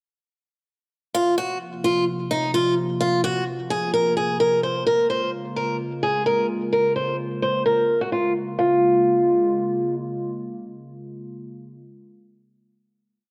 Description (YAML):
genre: hip hop, trap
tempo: 129 BPM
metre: 4/4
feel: half-time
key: Bb minor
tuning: A4 = 439 Hz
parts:
  - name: picked old ladder-braced acoustic guitar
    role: melody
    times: 1.1-9.9 s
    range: Eb4 to C5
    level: -22 LUFS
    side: equal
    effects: none
  - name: hollow soft pad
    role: sustained chords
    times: 1.4-11.8 s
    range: C3 to F4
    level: -31 LUFS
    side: equal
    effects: chorus
room: moderate lush hall reverb, RT60 2.2 s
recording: low-pass filter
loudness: -22 LUFS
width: mono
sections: 1.1-8.6 breakdown; 8.6-12.3 final chord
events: filter sweep 1.1-8.6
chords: 1.1 Fsus4; 4.9 Bbm7